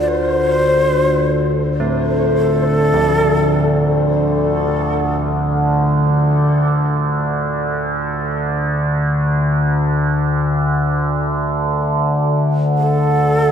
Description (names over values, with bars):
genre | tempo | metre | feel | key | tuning
dark ambient drone | free time | none | none | D minor | A4 = 440 Hz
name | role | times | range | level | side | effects
breathy shakuhachi | melody | 0.0-4.1, 12.8-13.5 s | A4 to D5 | -19 LUFS | left 1 dB | diffuse ambient delay
overtone-sweeping drone | drone | 0.0-13.5 s | D2 to D3 | -16 LUFS | equal | chorus, built-in reverb
bronze singing bowl | texture | 0.0-13.5 s | F4 | -32 LUFS | right 1 dB | none
carillon bells | arpeggios | 1.8-9.9 s | D3 to A3 | -23 LUFS | right 1 dB | diffuse ambient delay
room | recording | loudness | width
wet lush hall reverb, RT60 2.5 s | dreamy mix soaked in reverb | -14 LUFS | side -8 dB against mid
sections
0.0-13.5 A section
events
none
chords
0.0 Dm7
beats
free time